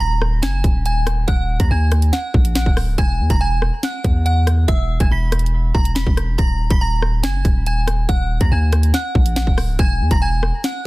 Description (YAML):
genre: hip hop, drill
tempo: 141 BPM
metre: 4/4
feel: half-time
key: Eb phrygian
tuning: A4 = 435 Hz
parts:
  - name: delicate synth tine bell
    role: melody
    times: 0.0-10.9 s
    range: E5 to B6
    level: -24 LUFS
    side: right 2 dB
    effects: chorus, phaser, tape echo
  - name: long sustained 808-style bass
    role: bass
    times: 0.0-10.5 s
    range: Db1 to E2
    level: -17 LUFS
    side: equal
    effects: none
  - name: drill drum kit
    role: drums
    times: 0.2-10.7 s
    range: hi-hat, kick drum, rim click, snare drum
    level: -18 LUFS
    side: equal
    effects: soft clipping on snare
room: digital ambience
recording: dense, heavily limited modern master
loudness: -15 LUFS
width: side -20 dB against mid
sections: 0.0-10.9 A section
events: none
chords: 0.0 Ebm; 3.0 E; 6.4 Ebm; 9.8 E